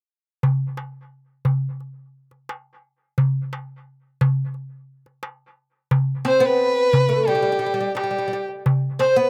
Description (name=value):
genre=Arabic maqam ensemble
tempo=88 BPM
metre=4/4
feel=straight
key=unclear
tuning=A4 = 441 Hz
part: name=darbuka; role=percussion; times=0.4-9.2 s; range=none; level=-23 LUFS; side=equal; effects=none
part: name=oud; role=second line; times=6.2-9.3 s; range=G3 to C4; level=-25 LUFS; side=equal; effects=none
part: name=warm violin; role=melody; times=6.3-9.3 s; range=G4 to C5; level=-22 LUFS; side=equal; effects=none
room=little or no reverb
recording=recorded outdoors, with no room sound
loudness=-21 LUFS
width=mono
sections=0.4-5.9 A section; 5.9-9.3 B section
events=none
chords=none